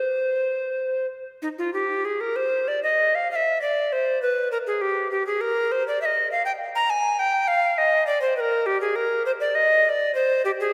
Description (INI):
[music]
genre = classical, baroque-style fantasia for unaccompanied recorder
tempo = 100 BPM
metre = 3/4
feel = uneven beats, rubato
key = C minor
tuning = A4 = 439 Hz
[part]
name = breathy tenor recorder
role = solo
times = 0.0-10.7 s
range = Eb4 to Bb5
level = -23 LUFS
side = equal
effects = none
[sound]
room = wet church reverb, RT60 3.3 s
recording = none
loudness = -23 LUFS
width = mono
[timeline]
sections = 0.0-1.4 A section; 1.4-10.7 B section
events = none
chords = none